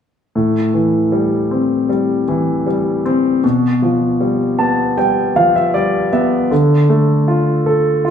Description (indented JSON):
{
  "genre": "pop",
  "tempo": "78 BPM",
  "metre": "4/4",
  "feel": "straight",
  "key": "A minor",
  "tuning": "A4 = 440 Hz",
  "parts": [
    { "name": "clear concert grand piano", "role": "accompaniment", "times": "0.4-8.1 s", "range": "A2 to A5", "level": "-13 LUFS", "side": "equal", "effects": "none" }
  ],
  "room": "wet large studio reverb, RT60 0.8 s",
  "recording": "band playing live in one room",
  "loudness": "-13 LUFS",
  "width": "side -8 dB against mid",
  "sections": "0.4-8.1 A section",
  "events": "grand piano fill 4.2-6.5",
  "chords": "0.4 Am7; 3.4 G7/B; 6.5 Dm"
}